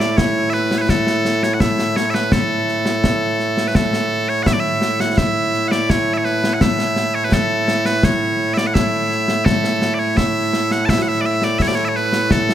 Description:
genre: scottish traditional, Scottish pipe music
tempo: 84 BPM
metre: 2/4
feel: straight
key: A major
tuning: A4 = 441 Hz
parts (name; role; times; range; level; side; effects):
- loud bright bagpipes; melody; 0.0-12.5 s; A2 to A5; -17 LUFS; right 1 dB; slapback echo
- concert snare drum and concert bass drum; drums; 0.0-12.5 s; none; -20 LUFS; left 1 dB; none
room: light reverb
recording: none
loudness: -15 LUFS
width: side -10 dB against mid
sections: 0.0-3.7 A section; 3.7-12.5 A section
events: none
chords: none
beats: 0.17 | 0.89 1.60 | 2.31 3.03 | 3.74 4.46 | 5.17 5.89 | 6.60 7.32 | 8.03 8.74 | 9.46 10.17 | 10.89 11.60 | 12.31

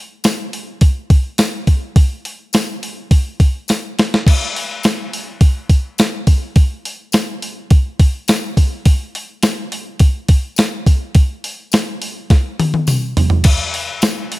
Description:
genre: rock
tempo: 104 BPM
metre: 4/4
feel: straight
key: none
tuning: none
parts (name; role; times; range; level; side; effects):
- crisp 8-bit digital drum machine; drums; 0.2-14.4 s; crash cymbal, hi-hat, kick drum, snare drum, toms; -13 LUFS; equal; none
- tambourine; percussion; 0.2-14.2 s; none; -28 LUFS; left 7 dB; none
room: digital ambience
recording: none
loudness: -13 LUFS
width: side -19 dB against mid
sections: 0.0-13.5 A section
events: drum fill 3.7-4.3, 12.3-13.5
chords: none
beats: 0.24 0.81 1.39 | 1.96 2.53 3.11 3.68 | 4.25 4.83 5.40 5.98 | 6.55 7.12 7.70 8.28 | 8.85 9.43 10.00 10.57 | 11.15 11.73 12.30 12.88 | 13.45 14.03

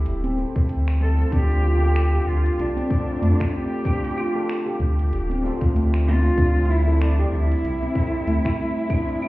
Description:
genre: organic downtempo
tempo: 95 BPM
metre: 4/4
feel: swing 58% on 16ths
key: D minor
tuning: A4 = 441 Hz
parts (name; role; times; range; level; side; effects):
- electric guitar at the edge of break-up; accompaniment; 0.0-9.3 s; G3 to E5; -30 LUFS; left 1 dB; sidechain pumping, tape echo, shimmer reverb
- warm sub bass; bass; 0.0-8.4 s; D1 to F2; -20 LUFS; equal; none
- afro-pop drum kit; drums; 0.1-9.3 s; claves, finger snaps, hi-hat, shaker; -38 LUFS; equal; overdrive
- handpan; arpeggios; 0.2-9.3 s; A3 to A4; -27 LUFS; right 1 dB; tape echo, shimmer reverb
- electronic kick drum; drums; 0.6-9.0 s; none; -22 LUFS; equal; none
- warm cello; melody; 1.0-9.3 s; D4 to A4; -27 LUFS; equal; ping-pong delay, shimmer reverb
room: light reverb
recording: heard muffled through a wall, stone room reverb, EQ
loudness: -19 LUFS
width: side -18 dB against mid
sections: 0.0-9.3 A section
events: none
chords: 0.0 C; 1.3 Dm7; 6.4 C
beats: 0.06 0.69 | 1.32 1.96 2.59 3.22 | 3.85 4.48 5.12 5.75 | 6.38 7.01 7.64 8.27 | 8.90

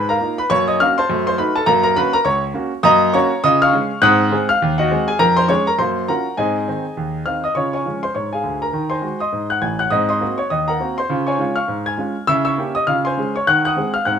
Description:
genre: jazz, stride piano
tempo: 204 BPM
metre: 4/4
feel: swing 60% on 8ths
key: Db major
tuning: A4 = 439 Hz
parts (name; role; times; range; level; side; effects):
- warm concert grand piano; solo; 0.0-14.2 s; A1 to Ab6; -15 LUFS; equal; none
room: moderate club reverb, RT60 0.8 s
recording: minimal, uncompressed stereo recording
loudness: -15 LUFS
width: side -7 dB against mid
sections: 0.0-7.6 A section; 7.6-14.2 B section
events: none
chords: 0.5 F#; 1.1 F#dim7; 1.7 F#; 2.9 Gb; 3.4 Db; 4.0 Ab7; 4.6 Ab7/Eb; 5.2 Db/F; 5.8 Gbmaj7; 6.4 Ab; 7.6 Db; 8.7 Ab7/Eb; 9.9 Ab9; 11.1 Db; 12.3 Dbdim7; 12.9 Db; 13.5 Ab7/Eb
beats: 0.20 | 0.50 0.79 1.09 1.38 | 1.68 1.97 2.26 2.56 | 2.85 3.15 3.44 3.73 | 4.03 4.32 4.62 4.91 | 5.20 5.50 5.79 6.08 | 6.38 6.67 6.97 7.26 | 7.56 7.85 8.15 8.44 | 8.74 9.03 9.33 9.63 | 9.92 10.22 10.51 10.81 | 11.10 11.40 11.69 11.99 | 12.29 12.58 12.88 13.17 | 13.47 13.76 14.06

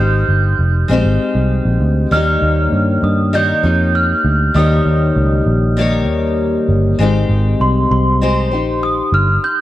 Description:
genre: indie pop, bedroom pop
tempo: 98 BPM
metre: 4/4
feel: straight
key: Ab major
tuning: A4 = 436 Hz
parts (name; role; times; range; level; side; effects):
- glockenspiel with rubber mallets; melody; 0.0-9.6 s; C6 to G6; -19 LUFS; right 2 dB; analog chorus, tape echo
- picked steel-string acoustic guitar; accompaniment; 0.0-9.6 s; Eb3 to Db5; -17 LUFS; left 3 dB; wide subtle chorus, vibrato effect
- vintage muted picked electric bass; bass; 0.0-9.4 s; F1 to G2; -15 LUFS; right 1 dB; none
room: small room ambience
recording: dry, close 1970s-style studio recording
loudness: -12 LUFS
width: side -14 dB against mid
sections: 0.0-9.6 A section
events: stop 9.4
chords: 0.0 Abmaj7; 2.1 Eb7; 7.0 Abmaj7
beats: 0.29 0.90 1.50 | 2.12 2.72 3.33 3.94 | 4.55 5.16 5.77 6.38 | 6.99 7.60 8.21 8.82 | 9.43

